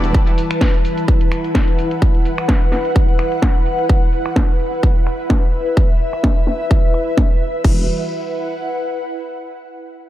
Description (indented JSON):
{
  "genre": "bass house",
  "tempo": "128 BPM",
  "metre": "4/4",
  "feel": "swing 55% on 16ths",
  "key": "E minor",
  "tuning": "A4 = 440 Hz",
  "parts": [
    { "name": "sweeping resonant pad", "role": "sustained chords", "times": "0.0-7.9 s", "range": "E3 to F#4", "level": "-29 LUFS", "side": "left 2 dB", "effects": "chorus, sidechain pumping" },
    { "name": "vowel-sweep wobble bass", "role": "bass", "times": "0.0-0.1, 7.6-7.9 s", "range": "E1", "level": "-19 LUFS", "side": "equal", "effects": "chorus, tube saturation, sidechain pumping" },
    { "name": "garage drum kit", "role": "drums", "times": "0.0-7.7 s", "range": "cabasa, crash cymbal, finger snaps, hi-hat, snare drum", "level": "-23 LUFS", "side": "equal", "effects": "low-pass filter on cymbals, low-pass filter on perc, low-pass filter on hats, low-pass filter on snare" },
    { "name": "ethereal airy pad", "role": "texture", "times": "0.0-9.5 s", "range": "E4 to A5", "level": "-21 LUFS", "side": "equal", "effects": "ensemble chorus, built-in reverb, sidechain pumping" },
    { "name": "electronic kick drum", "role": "drums", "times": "0.1-7.7 s", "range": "none", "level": "-14 LUFS", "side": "equal", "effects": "none" }
  ],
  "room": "light reverb",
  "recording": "none",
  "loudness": "-14 LUFS",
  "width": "side -14 dB against mid",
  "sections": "0.0-7.6 A section; 7.6-9.5 B section",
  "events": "filter sweep on drum 0.0-7.6; filter sweep on analog synth pad 0.0-7.6",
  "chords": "0.0 Emadd9"
}